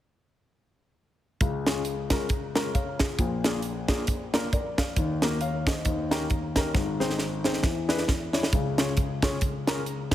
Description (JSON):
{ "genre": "uptempo gospel", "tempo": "135 BPM", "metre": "4/4", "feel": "swing 58% on 8ths", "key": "Db major", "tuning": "A4 = 440 Hz", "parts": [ { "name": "warm concert grand piano", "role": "accompaniment", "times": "1.4-10.1 s", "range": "Ab1 to F5", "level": "-28 LUFS", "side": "left 2 dB", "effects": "none" }, { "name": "crisp fusion drum kit", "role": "drums", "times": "1.4-10.1 s", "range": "hi-hat, kick drum, snare drum", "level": "-27 LUFS", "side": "right 1 dB", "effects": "none" } ], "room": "light reverb", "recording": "heavily compressed radio sound, multiband compression", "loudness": "-24 LUFS", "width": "side -12 dB against mid", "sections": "1.4-8.5 A section; 8.5-10.1 B section", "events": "drum fill 6.7-8.5", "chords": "1.4 Db; 3.2 Bb7; 5.0 Ebm; 5.9 Eb7; 6.7 Ab; 7.6 E7; 8.5 Db" }